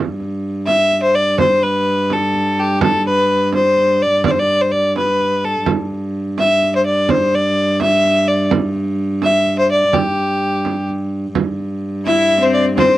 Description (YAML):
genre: medieval dance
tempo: 84 BPM (dotted quarters)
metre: 6/8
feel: straight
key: G major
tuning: A4 = 440 Hz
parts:
  - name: warm viola da gamba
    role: drone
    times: 0.0-13.0 s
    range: G2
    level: -20 LUFS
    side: right 1 dB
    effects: none
  - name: frame drum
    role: percussion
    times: 0.2-13.0 s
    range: none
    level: -20 LUFS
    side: right 7 dB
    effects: none
  - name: warm fiddle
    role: melody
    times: 0.7-13.0 s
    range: G4 to E5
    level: -14 LUFS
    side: left 1 dB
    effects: none
  - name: rich viola da gamba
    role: second line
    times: 12.1-13.0 s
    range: C4 to E4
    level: -17 LUFS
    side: left 5 dB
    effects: none
room: light reverb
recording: dry, close 1970s-style studio recording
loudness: -14 LUFS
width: side -15 dB against mid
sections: 0.0-11.4 A section; 11.4-13.0 A section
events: none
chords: none